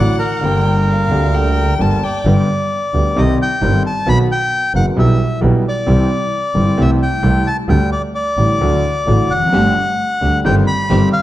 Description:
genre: tango.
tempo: 132 BPM.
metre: 4/4.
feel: rubato.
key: G major.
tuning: A4 = 435 Hz.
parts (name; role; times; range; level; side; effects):
bandoneon; melody; 0.0-11.2 s; Bb4 to B5; -19 LUFS; left 1 dB; none.
warm violin; second line; 0.0-2.3 s; F5 to A5; -24 LUFS; left 4 dB; slapback echo.
warm concert grand piano; accompaniment; 0.0-11.1 s; F#1 to G4; -17 LUFS; left 1 dB; none.
rich double bass; bass; 0.0-11.1 s; F1 to D2; -17 LUFS; right 2 dB; none.
dark chamber string section; stabs; 9.5-11.1 s; A3 to G4; -23 LUFS; right 3 dB; none.
room: moderate recital hall reverb, RT60 1.4 s.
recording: dark, warm production.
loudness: -12 LUFS.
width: side -14 dB against mid.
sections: 0.0-2.2 A section; 2.2-11.2 B section.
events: none.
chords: 0.4 Gm; 2.2 G; 3.2 Cm; 4.1 B; 5.0 Em/B; 5.9 C; 6.8 Am7/C; 7.7 Dsus4; 8.6 D; 9.5 Gsus2; 10.4 Cm/G.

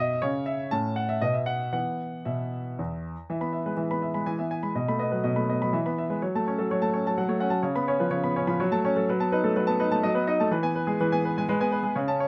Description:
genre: classical-period piano sonatina.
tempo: 124 BPM.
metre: 3/4.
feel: rubato.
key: E major.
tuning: A4 = 440 Hz.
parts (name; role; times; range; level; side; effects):
clear grand piano; solo; 0.0-12.3 s; E2 to B5; -27 LUFS; equal; none.
room: little or no reverb.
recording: close, detailed microphones.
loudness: -27 LUFS.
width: mono.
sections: 0.0-3.3 A section; 3.3-12.3 B section.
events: none.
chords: 0.2 N.C.; 0.7 A6; 1.2 N.C.; 1.7 E5; 3.3 E; 4.8 B7; 5.7 E; 6.2 F#m; 7.6 C#7; 8.6 F#m; 9.1 B7/F#; 10.5 E; 11.5 G#m.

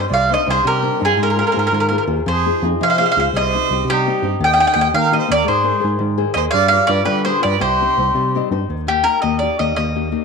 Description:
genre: italian folk, Italian serenade.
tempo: 112 BPM (dotted quarters).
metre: 6/8.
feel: straight.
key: C minor.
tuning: A4 = 436 Hz.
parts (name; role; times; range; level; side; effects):
mandolin; melody; 0.0-10.2 s; G4 to G5; -17 LUFS; equal; none.
warm violin; second line; 0.0-8.3 s; Eb4 to Eb5; -23 LUFS; right 10 dB; none.
flamenco guitar; accompaniment; 0.0-10.2 s; C3 to Eb5; -22 LUFS; left 9 dB; none.
tine electric piano; bass; 0.0-10.1 s; C2 to G3; -22 LUFS; right 1 dB; medium stereo tremolo.
room: wet spring reverb, RT60 1.5 s, small room ambience.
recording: 1960s-style stereo with parts hard left and right.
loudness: -14 LUFS.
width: side -5 dB against mid.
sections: 0.1-8.7 A section; 8.7-10.2 B section.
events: nylon-string guitar fill 8.2-8.7.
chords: 0.1 Cmadd9; 1.2 Ab6; 2.3 Fm7; 3.3 Cm; 4.4 Eb; 5.5 Abadd9; 6.5 G7; 7.6 Cm; 8.7 Eb.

